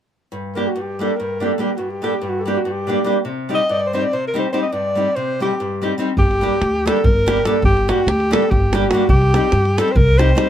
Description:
balkan folk, Balkan wedding band; free time; G harmonic minor; A4 = 440 Hz
nylon-string guitar; accompaniment; 0.3-10.5 s; G2 to G4; -21 LUFS; equal
breathy alto saxophone; melody; 0.6-10.5 s; F#4 to Eb5; -19 LUFS; equal
upright bass; bass; 6.2-10.3 s; G1 to G2; -18 LUFS; equal
davul; percussion; 6.2-10.5 s; -19 LUFS; equal
light reverb; close, detailed microphones; -15 LUFS; side -10 dB against mid
0.3-6.2 A section; 6.2-10.5 B section
0.3 Gm; 3.2 Cm; 6.2 Gm; 9.1 Cm

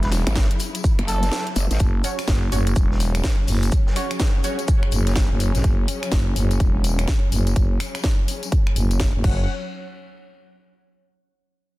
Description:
bass house; 125 BPM; 4/4; swing 61% on 16ths; A4 = 440 Hz
trumpet with cup mute; melody; 0.0-1.5 s; A4 to B4; -32 LUFS; right 2 dB; dub echo
dark studio string section; sustained chords; 0.0-9.5 s; C#3 to F#5; -32 LUFS; left 3 dB; sidechain pumping
growling FM bass; bass; 0.0-9.5 s; E1 to A1; -21 LUFS; equal; sidechain pumping
house drum kit; drums; 0.0-9.4 s; crash cymbal, finger snaps, hi-hat, snare drum, tambourine; -29 LUFS; left 1 dB
raw garage drum kit; drums; 0.0-5.6 s; hi-hat, shaker, snare drum; -37 LUFS; equal; high-pass filter on hats, high-pass filter on snare, high-pass filter on perc, high-pass filter on room
growl bass; bass; 0.3-1.8 s; F#1 to G#1; -21 LUFS; equal; distortion, chorus, tube saturation, sidechain pumping
electronic kick drum; drums; 0.4-9.4 s; -20 LUFS; equal
orchestra-hit-like synth stab; stabs; 2.0-4.6 s; C#4 to C#5; -31 LUFS; right 3 dB; built-in reverb, sidechain pumping, dub echo
studio reverb; dense, heavily limited modern master; -18 LUFS; side -18 dB against mid
0.0-1.8 A section; 1.8-9.5 B section; 9.5-11.4 C section
drop 0.0-1.8; break 1.3-1.8; filter sweep on FM bass 1.8-9.5
0.0 F#5; 9.5 N.C.

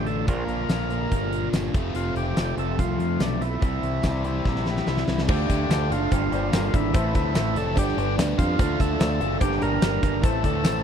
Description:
classic rock; 145 BPM; 4/4; straight; D minor; A4 = 440 Hz
overdriven tonewheel organ; melody; 0.0-10.8 s; D4 to Bb4; -30 LUFS; equal; slow rotary speaker
biting overdriven guitar; riff; 0.0-10.8 s; F2 to A4; -30 LUFS; left 14 dB; phaser
raw garage guitar; riff; 0.0-10.8 s; F2 to E4; -30 LUFS; right 14 dB; overdrive
growling fingered electric bass; bass; 0.0-10.8 s; F1 to F2; -28 LUFS; equal; overdrive
huge arena drum kit; drums; 0.1-10.7 s; crash cymbal, hi-hat, kick drum, snare drum, tambourine; -25 LUFS; equal
octave-fuzz lead guitar; second line; 4.0-5.2 s; E4 to C5; -33 LUFS; left 3 dB; distortion
clear upright piano; accompaniment; 5.3-10.8 s; D4 to D5; -34 LUFS; left 8 dB
cowbell; percussion; 5.3-10.7 s; -39 LUFS; right 21 dB
little or no reverb; dry, close 1970s-style studio recording; -21 LUFS; side -8 dB against mid
0.0-5.3 A section; 5.3-10.8 B section
drum fill 4.5-5.3
0.3 Bb; 1.7 F; 3.6 C; 5.3 Dm; 6.1 Gm; 6.9 Am; 7.8 G; 8.6 Dm; 9.4 Gm; 10.2 Am

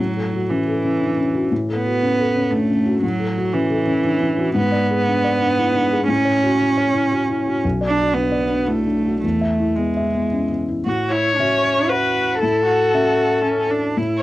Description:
neoclassical piano and strings; 117 BPM; 3/4; rubato; A4 = 440 Hz
rich cello; second line; 0.0-14.2 s; E3 to F#4; -20 LUFS; right 2 dB
felt-muted upright piano; accompaniment; 0.0-14.2 s; B1 to E5; -21 LUFS; left 2 dB
rich violin; melody; 11.1-13.7 s; A4 to C#5; -18 LUFS; left 2 dB; cassette tape
moderate booth ambience, RT60 0.2 s; home recording on cassette; -16 LUFS; side -16 dB against mid
0.0-10.9 A section; 10.9-14.2 B section
0.0 A6; 4.6 G#dim; 6.1 F#m7/A; 7.6 Bm; 9.2 E; 10.9 A6

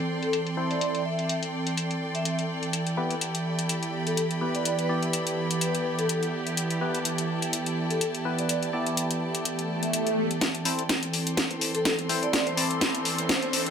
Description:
bass house; 125 BPM; 4/4; swing 55% on 16ths; A minor; A4 = 440 Hz
sweeping resonant pad; sustained chords; 0.0-13.7 s; E3 to A4; -30 LUFS; right 2 dB; chorus, sidechain pumping
warm studio string section; texture; 0.0-13.7 s; E4 to C6; -34 LUFS; left 1 dB; sidechain pumping
vibraphone with medium mallets; melody; 0.2-13.7 s; A4 to E5; -32 LUFS; equal; digital delay
house drum kit; drums; 0.2-13.7 s; hi-hat, snare drum; -28 LUFS; left 2 dB; low-pass filter on hats, low-pass filter on cymbals, low-pass filter on snare, low-pass filter on room
percussive organ stab; stabs; 0.6-13.7 s; B3 to D5; -32 LUFS; left 2 dB; chorus, sidechain pumping, digital delay
swell and riser; sound effects; 9.7-13.7 s; -33 LUFS; right 1 dB
electronic kick drum; drums; 10.4-13.4 s; -32 LUFS; equal; overdrive, high-pass filter on kick
moderate lush hall reverb, RT60 1.7 s; -25 LUFS; side -7 dB against mid
0.0-10.4 A section; 10.4-13.7 B section
filter sweep on analog synth pad 0.0-10.4; swell 9.7-10.4; build-up 10.4-13.7; drum fill 10.4-13.7
0.0 Am; 2.7 Em; 10.4 Am

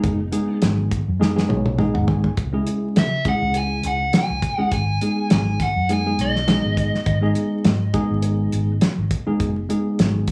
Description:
straight-eighth soul blues; 102 BPM; 4/4; swing 55% on 16ths; G# minor; A4 = 436 Hz
clean lap steel guitar; second line; 0.0-0.6 s; D#4; -38 LUFS; equal
tine electric piano; accompaniment; 0.0-10.3 s; G#3 to G#5; -24 LUFS; equal; overdrive
vintage muted fingered electric bass; bass; 0.0-10.3 s; F#1 to C#3; -26 LUFS; equal
cloth-damped thuddy drum kit; drums; 0.0-10.3 s; hi-hat, kick drum, snare drum, toms; -24 LUFS; equal
crunchy overdriven guitar; melody; 3.0-7.3 s; D#5 to G#5; -27 LUFS; equal; tape echo
light reverb; vinyl crackle, small room reverb; -20 LUFS; mono
0.0-10.3 A section
drum fill 1.2-2.4; tine electric piano fill 1.2-2.4
0.0 G#m; 2.4 C#m; 4.7 G#m

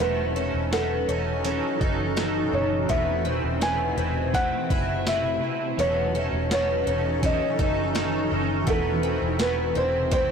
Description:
dream pop; 83 BPM; 4/4; straight; A4 = 439 Hz
felt-muted upright piano; melody; 0.0-10.3 s; A4 to G#5; -27 LUFS; right 1 dB; ping-pong delay
electric guitar at the edge of break-up; accompaniment; 0.0-10.3 s; E3 to B4; -32 LUFS; right 6 dB; harmonic tremolo, analog chorus
granular cloud pad; sustained chords; 0.0-10.3 s; B2 to A4; -30 LUFS; right 1 dB; built-in reverb
picked twelve-string acoustic guitar; arpeggios; 0.0-10.3 s; B3 to E4; -29 LUFS; left 7 dB; lush chorus, ping-pong delay
vintage muted fingered electric bass; bass; 0.0-10.3 s; E1 to F#1; -30 LUFS; equal; tube saturation
boom bap sampler-style drum kit; drums; 0.0-10.3 s; hi-hat, kick drum, snare drum, tambourine; -28 LUFS; right 1 dB
moderate huge ambient reverb, RT60 4.8 s; blown-out, overdriven recording, overdrive; -22 LUFS; side -6 dB against mid
0.0-10.3 A section
0.0 B9/E; 2.9 Amadd9/E; 5.8 B9/E; 8.7 Amadd9/E

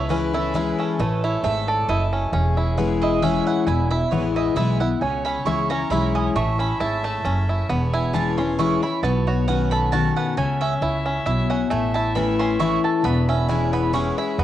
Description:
bluegrass; 134 BPM; 3/4; swing 54% on 8ths; E major; A4 = 440 Hz
bluegrass banjo; melody; 0.0-14.4 s; E3 to A4; -25 LUFS; right 3 dB
clear fiddle; second line; 0.0-14.4 s; E4 to E5; -36 LUFS; left 5 dB; cassette tape
picked steel-string acoustic guitar; accompaniment; 0.0-14.4 s; E2 to F#4; -24 LUFS; left 6 dB; cassette tape
mandolin; stabs; 0.0-14.4 s; G#4 to D#6; -28 LUFS; right 6 dB; cassette tape
upright bass; bass; 0.0-14.4 s; E1 to C#2; -24 LUFS; right 1 dB
moderate spring reverb, RT60 2.5 s; home recording on cassette; -19 LUFS; side -12 dB against mid
0.0-5.0 A section; 5.0-14.4 A section
mandolin solo 0.0-14.4
0.0 C#m; 1.0 A; 2.3 E6; 3.7 E; 5.0 C#m; 6.4 A; 7.7 E6; 9.0 Badd9; 10.4 C#m; 11.7 A; 13.1 E6

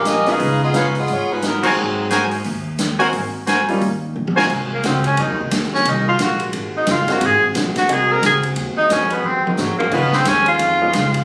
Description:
jazz, big band swing; 177 BPM; 4/4; swing 62% on 8ths; Ab mixolydian; A4 = 440 Hz
dark saxophone section; melody; 0.0-2.3 s; Gb3 to F5; -21 LUFS; equal
warm trumpet section; stabs; 0.0-4.5 s; Eb4 to Ab5; -22 LUFS; equal
upright bass; bass; 0.0-11.2 s; Gb1 to Ab2; -26 LUFS; equal
swinging big-band drum kit; drums; 0.1-11.2 s; crash cymbal, hi-hat, kick drum, ride cymbal, snare drum, toms; -26 LUFS; equal
clear baby grand piano; accompaniment; 0.3-0.9, 3.0-5.0, 7.1-10.9 s; G3 to Gb4; -26 LUFS; equal
mellow trombone section; sustained chords; 4.5-11.2 s; C3 to Gb4; -31 LUFS; equal
clear tenor saxophone; melody; 4.7-11.2 s; Eb3 to Bb4; -19 LUFS; equal
moderate large studio reverb, RT60 1.2 s; recorded on a phone in the room, club reverb, compression; -18 LUFS; mono
0.0-4.5 A section; 4.5-11.2 B section
band accent 1.6; drum fill 4.2-4.5, 9.2-9.9; tenor saxophone solo 4.5-11.2
0.4 Db9; 1.8 Ab9; 3.8 Ebsus2; 4.5 Ab9; 9.9 Db9

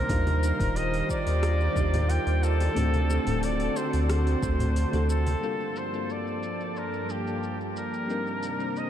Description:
sunset chillout; 90 BPM; 4/4; straight; G minor; A4 = 440 Hz
clear flugelhorn; melody; 0.0-8.9 s; G4 to G5; -31 LUFS; left 1 dB; ping-pong delay, shimmer reverb
soft electric-piano-like synth keys; accompaniment; 0.0-8.9 s; G3 to A5; -32 LUFS; equal; chorus, tremolo, auto-pan, ping-pong delay, shimmer reverb
airy breathy pad; sustained chords; 0.0-8.9 s; G2 to A5; -32 LUFS; right 1 dB; chorus, shimmer reverb
warm sub bass; bass; 0.0-5.4 s; D1 to Eb2; -25 LUFS; equal
deep house drum kit; drums; 0.1-8.9 s; hi-hat, rim click, shaker; -42 LUFS; equal; overdrive, low-pass filter on hats, low-pass filter on perc, low-pass filter on snare
electronic kick drum; drums; 0.1-4.6 s; -31 LUFS; equal; overdrive
congas and bongos; percussion; 0.1-5.4 s; -37 LUFS; equal
moderate huge ambient reverb, RT60 9.0 s; dreamy mix soaked in reverb; -24 LUFS; side -10 dB against mid
0.0-5.4 A section; 5.4-8.9 B section
filter sweep on drum 5.4-8.9
0.1 Ebmaj9; 2.8 D7; 5.4 Gm9; 8.1 Cm9

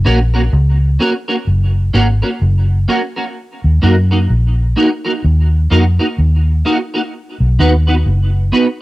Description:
dub reggae; 64 BPM; 4/4; swing 60% on 16ths; F# major; A4 = 441 Hz
clean electric guitar; accompaniment; 0.0-8.6 s; A#3 to B4; -16 LUFS; right 1 dB; ensemble chorus, tape echo, plate reverb
vintage muted fingered electric bass; bass; 0.0-8.5 s; F#1 to F#2; -11 LUFS; equal
light reverb; home recording on cassette; -11 LUFS; side -18 dB against mid
0.0-8.8 A section
0.0 F#; 3.4 D#m; 7.1 B

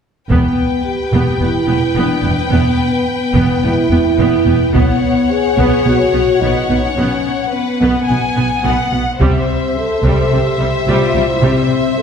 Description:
cinematic, epic orchestral film score; 108 BPM; 4/4; straight; A4 = 440 Hz
bright symphonic violin section; melody; 0.3-12.0 s; E5 to G5; -22 LUFS; left 4 dB
rich chamber violin section; second line; 0.3-12.0 s; B4 to G#5; -22 LUFS; left 3 dB
clear symphonic viola section; accompaniment; 0.3-11.7 s; G3 to B3; -21 LUFS; right 3 dB
mellow French horn section; sustained chords; 0.3-12.0 s; B3 to A4; -17 LUFS; left 1 dB
rich studio cello section; bass; 0.3-11.5 s; E2 to C3; -20 LUFS; right 2 dB
warm symphonic double bass section; bass; 0.3-11.5 s; E1 to C2; -19 LUFS; right 2 dB
solo taiko drums; drums; 0.3-1.4, 4.8-5.9, 9.2-10.3 s; -20 LUFS; equal
wet scoring stage reverb, RT60 1.6 s; heard from further back in the room; -12 LUFS; side -7 dB against mid
0.3-12.0 A section
0.3 Em; 4.8 Bsus2; 9.2 C

